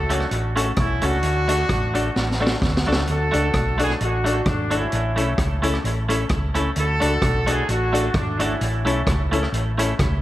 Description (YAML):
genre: ska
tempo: 130 BPM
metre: 4/4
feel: swing 55% on 8ths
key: unclear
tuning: A4 = 441 Hz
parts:
  - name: warm horn section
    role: melody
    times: 0.0-9.1 s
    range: A3 to A4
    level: -25 LUFS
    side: equal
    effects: dub echo
  - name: hollow-body short-scale fingered electric bass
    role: bass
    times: 0.0-10.2 s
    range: G#1 to D2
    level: -24 LUFS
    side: equal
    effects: none
  - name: semi-hollow electric guitar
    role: accompaniment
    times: 0.1-9.9 s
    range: A3 to A4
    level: -27 LUFS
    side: right 2 dB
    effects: spring reverb, dub echo
  - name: tack piano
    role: stabs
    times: 0.1-9.9 s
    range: C#4 to D5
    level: -28 LUFS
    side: left 3 dB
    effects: dub echo
  - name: street-band drum kit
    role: drums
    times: 0.1-10.1 s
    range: hi-hat, kick drum, rim click, snare drum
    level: -25 LUFS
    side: equal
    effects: none
room: light reverb, studio reverb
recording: none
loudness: -19 LUFS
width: side -14 dB against mid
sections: 0.0-3.1 A section; 3.1-10.2 B section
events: drum fill 2.2-3.1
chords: 0.0 F#m; 1.2 D; 4.9 A; 6.8 D; 8.6 A